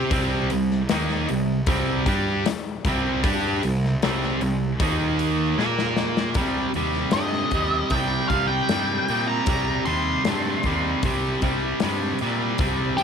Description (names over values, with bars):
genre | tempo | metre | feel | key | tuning
blues rock power trio and southern rock | 77 BPM | 4/4 | straight | C minor | A4 = 440 Hz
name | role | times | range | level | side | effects
sludgy distorted guitar | riff | 0.0-13.0 s | C3 to C5 | -24 LUFS | right 1 dB | overdrive
fuzz picked electric bass | bass | 0.0-12.9 s | C2 to Bb2 | -28 LUFS | right 1 dB | overdrive
big rock drum kit | drums | 0.1-13.0 s | hi-hat, kick drum, snare drum | -27 LUFS | left 3 dB | none
octave-fuzz lead guitar | melody | 7.1-13.0 s | G4 to C6 | -25 LUFS | right 1 dB | distortion, slapback echo
room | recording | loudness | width
small room ambience | 1960s-style stereo | -20 LUFS | side -7 dB against mid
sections
0.0-6.4 A section; 6.4-13.0 B section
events
drum fill 5.6-6.4; lead electric guitar solo 6.4-13.0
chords
0.0 Cm; 4.8 Eb5; 5.6 Bb5; 6.4 Cm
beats
| 0.11 0.89 1.67 2.45 | 3.23 4.02 4.80 5.58 | 6.36 7.14 7.92 8.70 | 9.48 10.26 11.04 11.82 | 12.60